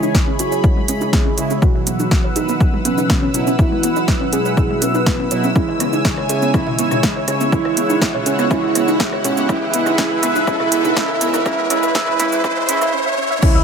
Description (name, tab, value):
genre	melodic techno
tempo	122 BPM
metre	4/4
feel	straight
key	unclear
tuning	A4 = 440 Hz
part	fat analog lead	melody	0.0-13.6 s	C#4 to B4	-21 LUFS	equal	chorus, sidechain pumping, ping-pong delay
part	lush unison pad	sustained chords	0.0-13.6 s	G#4 to E6	-24 LUFS	equal	chorus, phaser, sidechain pumping
part	soft round pluck	arpeggios	0.0-13.6 s	G#3 to E6	-24 LUFS	equal	wide subtle chorus, sidechain pumping, digital delay
part	analog synth brass	stabs	0.0-13.6 s	B2 to E4	-22 LUFS	right 3 dB	chorus, sidechain pumping, digital delay
part	tight sequencer bass	bass	0.0-13.6 s	A1 to C#2	-33 LUFS	equal	none
part	deep house drum kit	drums	0.0-13.5 s	crash cymbal, hi-hat, rim click, shaker, snare drum, toms	-23 LUFS	right 1 dB	none
part	riser and sub drop	sound effects	4.6-13.6 s	none	-27 LUFS	right 2 dB	none
part	electronic kick drum	drums	0.1-13.5 s	none	-17 LUFS	equal	overdrive
room	light reverb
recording	high-pass filter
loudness	-14 LUFS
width	side -6 dB against mid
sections	0.0-13.4 A section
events	build-up 0.0-13.4; filter sweep on synth arpeggio sound 0.0-13.4; filter sweep on analog synth lead 0.0-13.4; filter sweep 0.0-13.4; riser 4.6-13.4; impact 13.4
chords	0.0 C#m; 1.6 Bsus4; 5.6 C#m; 9.5 Bsus4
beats	0.15 0.64 1.13 | 1.62 2.11 2.61 3.10 | 3.59 4.08 4.57 5.07 | 5.56 6.05 6.54 7.03 | 7.52 8.02 8.51 9.00 | 9.49 9.98 10.47 10.97 | 11.46 11.95 12.44 12.93 | 13.43